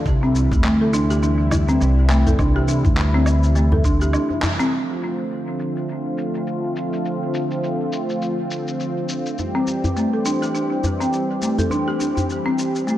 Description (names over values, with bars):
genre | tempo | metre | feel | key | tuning
organic downtempo | 103 BPM | 4/4 | swing 57% on 16ths | D minor | A4 = 440 Hz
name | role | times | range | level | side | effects
warm analog pad | sustained chords | 0.0-13.0 s | C3 to G4 | -24 LUFS | equal | chorus, sidechain pumping
upright bass | bass | 0.1-4.1 s | C2 to D2 | -18 LUFS | equal | sidechain pumping
electronic kick drum | drums | 0.1-4.0 s | none | -20 LUFS | equal | none
electronic shaker, handclaps and woodblock | drums | 0.1-13.0 s | none | -30 LUFS | equal | low-pass filter on perc, low-pass filter on snare, analog delay
djembe | percussion | 0.1-4.7, 9.4-12.6 s | none | -25 LUFS | left 1 dB | none
folk marimba with medium hard mallets | arpeggios | 0.2-4.7, 9.6-13.0 s | A3 to A4 | -22 LUFS | equal | dub echo
room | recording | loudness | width
moderate echo chamber reverb, RT60 2.2 s | echo-heavy mix | -18 LUFS | side -13 dB against mid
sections
0.0-4.7 A section; 4.7-13.0 B section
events
filter sweep on marimba 0.0-4.7; break 4.1-4.7; band accent 4.4; filter sweep on drum 4.7-13.0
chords
0.1 C; 4.7 Dm7; 9.4 C